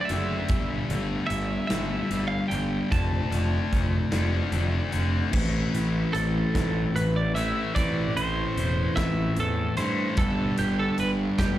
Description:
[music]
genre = quiet-loud alternative rock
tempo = 50 BPM (dotted quarters)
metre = 6/8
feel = straight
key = A minor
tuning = A4 = 440 Hz
[part]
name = twelve-string electric guitar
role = melody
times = 0.0-11.6 s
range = G4 to A5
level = -31 LUFS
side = right 3 dB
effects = slapback echo
[part]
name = picked steel-string acoustic guitar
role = arpeggios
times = 0.0-10.2 s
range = A2 to E4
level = -37 LUFS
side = right 6 dB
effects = none
[part]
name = sludgy distorted guitar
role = riff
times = 0.0-11.6 s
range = G2 to D4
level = -28 LUFS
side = left 3 dB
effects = overdrive
[part]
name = fuzz picked electric bass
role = bass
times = 0.1-11.6 s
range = E1 to G2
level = -28 LUFS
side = right 1 dB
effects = overdrive
[part]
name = big rock drum kit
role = drums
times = 0.1-11.6 s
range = crash cymbal, hi-hat, kick drum, snare drum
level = -31 LUFS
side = equal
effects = none
[part]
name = fuzz guitar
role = riff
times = 10.2-11.6 s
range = G3 to G4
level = -32 LUFS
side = right 10 dB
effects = distortion
[sound]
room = light reverb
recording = live gig heard through the venue's PA, club reverb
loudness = -23 LUFS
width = side -13 dB against mid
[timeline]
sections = 0.0-5.3 A section; 5.3-11.6 B section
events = clean electric guitar solo 5.3-11.6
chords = 0.0 D; 0.5 Gsus2; 2.9 Dm/F; 5.3 Amadd9; 10.2 G

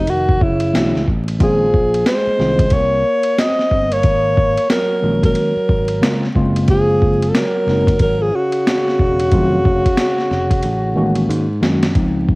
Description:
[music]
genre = hip hop, jazz-hop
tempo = 91 BPM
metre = 4/4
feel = swing 61% on 16ths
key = unclear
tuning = A4 = 442 Hz
[part]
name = breathy alto saxophone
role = melody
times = 0.0-11.3 s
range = Eb4 to Eb5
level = -17 LUFS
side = equal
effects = none
[part]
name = trombone with bucket mute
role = second line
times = 0.0-11.3 s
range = C3 to C4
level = -24 LUFS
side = right 1 dB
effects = none
[part]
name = picked electric bass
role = bass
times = 0.0-12.4 s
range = Fb1 to Ab2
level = -21 LUFS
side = equal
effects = none
[part]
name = boom bap sampler-style drum kit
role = drums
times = 0.1-12.4 s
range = hi-hat, kick drum, ride cymbal, snare drum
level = -18 LUFS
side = equal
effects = cassette tape
[part]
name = tine electric piano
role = accompaniment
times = 0.7-12.4 s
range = Db3 to Gb4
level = -18 LUFS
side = equal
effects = fast stereo tremolo
[sound]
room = light reverb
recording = home recording on cassette, vinyl crackle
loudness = -13 LUFS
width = side -24 dB against mid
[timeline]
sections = 0.0-12.0 A section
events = drum fill 10.6-12.0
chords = 0.0 F7(no3); 0.7 Cbm11; 1.4 Bbm11; 4.0 Ab9sus4; 6.4 Gbmaj9#11; 9.3 F7b9; 11.3 Ab9sus4

